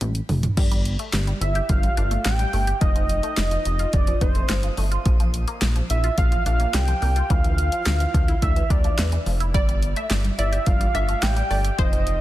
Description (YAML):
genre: synth-pop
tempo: 107 BPM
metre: 4/4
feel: straight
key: unclear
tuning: A4 = 439 Hz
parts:
  - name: chorused synth bass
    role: bass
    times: 0.0-12.2 s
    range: F1 to E2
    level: -23 LUFS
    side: equal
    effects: none
  - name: deep house drum kit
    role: drums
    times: 0.0-12.2 s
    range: crash cymbal, handclaps, hi-hat, kick drum, snare drum, toms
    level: -22 LUFS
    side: equal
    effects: soft clipping on snare
  - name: resonant blip pluck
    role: arpeggios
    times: 0.6-12.0 s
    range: E3 to G4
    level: -33 LUFS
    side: equal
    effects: phaser, shimmer reverb, digital delay
  - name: wide unison lead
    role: melody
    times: 1.4-12.2 s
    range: C5 to G5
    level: -27 LUFS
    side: right 1 dB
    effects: shimmer reverb
  - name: funky polysynth comp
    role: second line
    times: 9.5-11.9 s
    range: C5 to E5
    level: -29 LUFS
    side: equal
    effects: chorus, shimmer reverb, digital delay
room: light reverb, digital ambience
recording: dense, heavily limited modern master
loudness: -19 LUFS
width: side -15 dB against mid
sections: 0.6-12.2 A section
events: drum fill 0.0-0.6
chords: 0.0 F; 0.6 Gsus2; 2.8 F7; 5.1 Bb5; 7.3 Dmadd9; 9.5 Gsus2